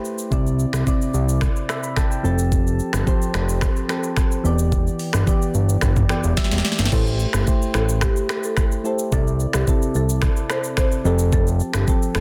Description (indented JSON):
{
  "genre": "afrobeats",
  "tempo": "109 BPM",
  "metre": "4/4",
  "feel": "straight",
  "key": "A minor",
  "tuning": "A4 = 441 Hz",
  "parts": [
    { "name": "soft electric-piano-like synth keys", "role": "accompaniment", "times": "0.0-12.2 s", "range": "C3 to B5", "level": "-27 LUFS", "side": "equal", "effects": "chorus" },
    { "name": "afro-pop drum kit", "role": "drums", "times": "0.0-12.2 s", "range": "crash cymbal, finger snaps, hi-hat, kick drum, rim click, shaker, snare drum, toms", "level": "-24 LUFS", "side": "equal", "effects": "soft clipping on snare" },
    { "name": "fat analog bass", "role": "bass", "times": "0.3-12.2 s", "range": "E1 to C2", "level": "-22 LUFS", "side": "equal", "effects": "none" },
    { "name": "marimba with medium mallets", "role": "melody", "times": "6.9-12.2 s", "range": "G4 to C5", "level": "-30 LUFS", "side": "equal", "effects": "none" }
  ],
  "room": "little or no reverb",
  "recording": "dense, heavily limited modern master",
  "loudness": "-20 LUFS",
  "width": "mono",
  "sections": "0.0-6.9 A section; 6.9-12.2 B section",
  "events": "synth keys fill 1.4-2.5, 5.8-6.9; drum fill 6.4-6.9",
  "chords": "0.3 Cadd9; 2.2 Fadd9; 4.4 Em7; 6.9 Am7; 9.1 Cadd9; 11.1 Fadd9"
}